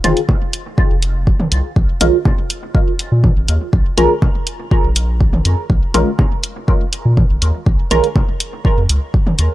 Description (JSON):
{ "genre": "dub techno", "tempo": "122 BPM", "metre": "4/4", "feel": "straight", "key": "unclear", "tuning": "A4 = 444 Hz", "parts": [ { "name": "filtered dub chord stab", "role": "stabs", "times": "0.0-8.1 s", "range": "Eb3 to Bb4", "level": "-19 LUFS", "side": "right 1 dB", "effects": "phaser, vintage 12-bit sampler grit, sidechain pumping, dub echo" }, { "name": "soft dub sub bass", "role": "bass", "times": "0.0-9.5 s", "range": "F1 to Bb2", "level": "-16 LUFS", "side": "equal", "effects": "transformer saturation, sidechain pumping" }, { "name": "electronic hi-hat", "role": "drums", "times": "0.0-9.5 s", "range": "none", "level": "-18 LUFS", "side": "equal", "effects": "none" }, { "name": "electronic toms and congas", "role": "percussion", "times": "0.0-9.4 s", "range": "none", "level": "-21 LUFS", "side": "equal", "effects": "overdrive, sidechain pumping on toms, sidechain pumping on perc, dub echo" }, { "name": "electronic kick drum", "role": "drums", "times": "0.3-9.2 s", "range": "none", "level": "-14 LUFS", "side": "equal", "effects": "none" } ], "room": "digital ambience", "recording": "dry, gritty hardware recording, transformer saturation, lossy compression artefacts", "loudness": "-13 LUFS", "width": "side -15 dB against mid", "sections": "0.0-9.5 A section", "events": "none", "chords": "0.0 F5; 1.8 Bbm7", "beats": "0.29 0.78 1.27 | 1.76 2.25 2.75 3.24 | 3.73 4.22 4.71 5.21 | 5.70 6.19 6.68 7.17 | 7.67 8.16 8.65 9.14" }